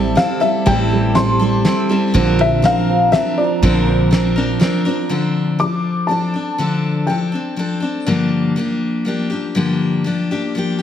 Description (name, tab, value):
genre	acoustic folk duo or small band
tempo	122 BPM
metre	3/4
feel	straight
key	D minor from 5.1 s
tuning	A4 = 443 Hz
part	felt-muted upright piano	melody	0.0-7.8 s	D5 to D6	-19 LUFS	left 3 dB	none
part	picked steel-string acoustic guitar	accompaniment	0.0-10.8 s	G2 to Bb4	-18 LUFS	left 3 dB	none
part	warbly tape-like pad	sustained chords	0.0-5.1 s	D4 to Bb5	-27 LUFS	right 1 dB	chorus, built-in reverb
part	dark upright piano	arpeggios	0.0-5.2 s	F3 to C4	-20 LUFS	right 8 dB	none
part	upright bass	bass	0.0-4.6 s	A1 to Bb1	-19 LUFS	right 1 dB	none
part	cloth-damped thuddy drum kit	drums	0.2-4.7 s	kick drum, ride cymbal, snare drum	-19 LUFS	equal	none
room	wet large studio reverb, RT60 0.9 s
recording	heavily compressed radio sound, multiband compression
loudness	-14 LUFS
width	side -10 dB against mid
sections	0.0-5.1 A section; 5.1-10.8 B section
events	none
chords	0.0 Am7; 2.1 Bbadd9; 5.1 Dm7; 8.1 Gm7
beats	0.18 | 0.67 1.16 1.66 | 2.15 2.64 3.13 | 3.63 4.12 4.62 | 5.11 5.60 6.10 | 6.59 7.09 7.58 | 8.08 8.57 9.07 | 9.56 10.06 10.55